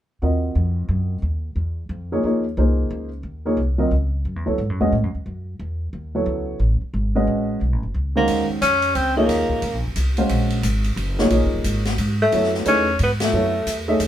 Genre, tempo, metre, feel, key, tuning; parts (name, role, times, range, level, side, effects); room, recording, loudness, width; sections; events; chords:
modal jazz; 179 BPM; 3/4; swing 62% on 8ths; Eb dorian; A4 = 440 Hz
dark baby grand piano; accompaniment; 0.2-14.0 s; Eb3 to F5; -21 LUFS; equal
upright bass; bass; 0.2-14.1 s; Eb1 to A2; -22 LUFS; equal
mellow tenor saxophone; melody; 8.2-9.8, 12.2-13.8 s; A3 to Db4; -19 LUFS; left 1 dB
open jazz drum kit; drums; 8.3-14.1 s; hi-hat, kick drum, ride cymbal, snare drum; -29 LUFS; left 2 dB
moderate studio reverb, RT60 0.7 s; band playing live in one room; -18 LUFS; side -11 dB against mid
0.2-8.3 A section; 8.3-14.1 B section
band accent 13.2
0.2 Ebm11; 4.3 Gbm11; 8.3 Ebm11; 12.3 Gbm11